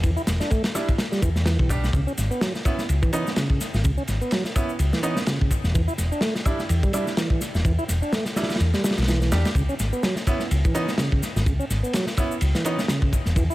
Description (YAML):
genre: breakbeat, breaks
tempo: 126 BPM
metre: 4/4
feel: swing 56% on 16ths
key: unclear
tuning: A4 = 440 Hz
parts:
  - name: tonewheel organ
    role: riff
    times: 0.0-13.5 s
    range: C#3 to E4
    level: -28 LUFS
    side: right 1 dB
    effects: stopped rotary speaker, tube saturation, vintage 12-bit sampler grit, low-pass filter, ping-pong delay
  - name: fingered electric bass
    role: bass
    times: 0.0-13.5 s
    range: E1 to E2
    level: -22 LUFS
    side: equal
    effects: none
  - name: crunchy breakbeat drum kit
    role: drums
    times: 0.0-13.5 s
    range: kick drum, ride cymbal, snare drum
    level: -24 LUFS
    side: equal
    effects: none
  - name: shaker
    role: drums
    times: 0.0-13.5 s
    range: none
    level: -38 LUFS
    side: left 1 dB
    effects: overdrive
  - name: bright grand piano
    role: stabs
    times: 0.7-12.8 s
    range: G3 to G4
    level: -30 LUFS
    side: right 1 dB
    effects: ping-pong delay
room: small room ambience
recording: none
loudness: -20 LUFS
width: side -17 dB against mid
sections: 0.0-13.5 A section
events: none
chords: 0.0 Em7; 1.9 C#m7; 5.5 Em7; 9.6 C#m7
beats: | 0.03 0.51 0.99 1.46 | 1.94 2.41 2.89 3.37 | 3.84 4.32 4.79 5.27 | 5.75 6.22 6.70 7.18 | 7.65 8.13 8.61 9.08 | 9.56 10.03 10.51 10.99 | 11.46 11.94 12.41 12.89 | 13.37